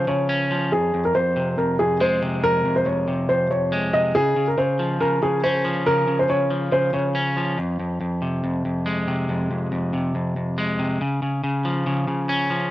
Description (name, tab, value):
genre	hip hop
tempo	140 BPM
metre	4/4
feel	half-time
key	F minor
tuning	A4 = 440 Hz
part	dark baby grand piano	melody	0.0-7.5 s	Ab4 to Eb5	-21 LUFS	equal	none
part	clean electric guitar	accompaniment	0.0-12.7 s	F2 to Db4	-22 LUFS	equal	none
room	light reverb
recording	dry, gritty hardware recording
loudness	-20 LUFS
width	side -15 dB against mid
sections	0.0-12.7 A section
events	break 7.6-12.7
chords	0.0 Db; 0.7 Fm; 4.1 Db; 7.6 Fm; 11.0 Db